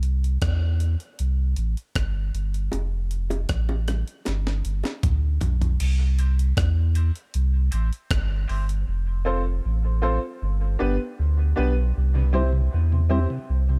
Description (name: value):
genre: dub reggae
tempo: 78 BPM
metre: 4/4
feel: straight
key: C major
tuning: A4 = 440 Hz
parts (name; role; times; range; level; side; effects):
- warm sub bass; bass; 0.0-13.8 s; F1 to E2; -24 LUFS; equal; none
- breakbeat sampler-style drum kit; drums; 0.0-8.9 s; crash cymbal, hi-hat, kick drum, rim click, snare drum, toms; -29 LUFS; equal; none
- bongos; percussion; 2.7-5.6 s; none; -36 LUFS; equal; high-pass filter on perc, dub echo
- clear upright piano; stabs; 6.2-13.2 s; B3 to C5; -32 LUFS; equal; high-pass filter, dub echo
- mellow tonewheel organ; accompaniment; 12.2-13.8 s; C3 to E4; -31 LUFS; equal; slow rotary speaker
room: little or no reverb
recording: dark, warm production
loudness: -24 LUFS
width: mono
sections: 0.0-5.8 A section; 5.8-13.8 B section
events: break 0.0-5.8; filter sweep 2.7-8.9; drum fill 4.3-5.8; part muted 8.9-13.8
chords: 0.0 C; 2.7 F; 4.3 G; 5.8 C; 8.9 F; 10.4 G; 11.9 C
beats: 0.42 1.19 1.96 | 2.73 3.49 4.26 5.03 | 5.80 6.57 7.34 8.11 | 8.87 9.64 10.41 11.18 | 11.95 12.72 13.48